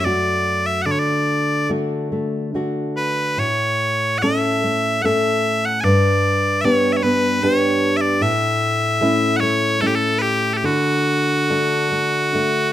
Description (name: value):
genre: celtic folk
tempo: 69-76 BPM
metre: 3/4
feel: rubato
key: unclear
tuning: A4 = 440 Hz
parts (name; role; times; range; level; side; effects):
- loud bright bagpipes; melody; 0.0-12.7 s; F#4 to G#5; -19 LUFS; equal; none
- nylon-string guitar; accompaniment; 0.0-12.7 s; F#2 to A4; -20 LUFS; left 1 dB; none
room: light reverb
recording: close, detailed microphones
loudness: -16 LUFS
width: side -12 dB against mid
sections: 0.0-12.7 A section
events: none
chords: 0.0 F#m; 0.9 D; 3.4 A; 5.9 G; 8.2 A; 10.6 D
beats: 0.06 | 0.87 1.70 2.55 | 3.39 4.23 5.05 | 5.86 6.65 7.44 | 8.22 9.02 9.82 | 10.65 11.49 12.35